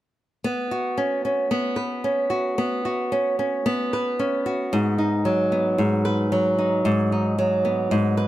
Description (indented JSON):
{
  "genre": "pop",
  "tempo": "112 BPM",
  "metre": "4/4",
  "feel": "swing 55% on 16ths",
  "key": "B major",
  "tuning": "A4 = 440 Hz",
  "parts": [
    { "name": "flamenco guitar", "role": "accompaniment", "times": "0.4-8.3 s", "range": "G#2 to B4", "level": "-20 LUFS", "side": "equal", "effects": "none" }
  ],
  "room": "light reverb",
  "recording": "none",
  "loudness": "-20 LUFS",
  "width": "side -14 dB against mid",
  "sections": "0.5-8.3 A section",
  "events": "none",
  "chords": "0.5 Bsus2; 4.7 G#m7"
}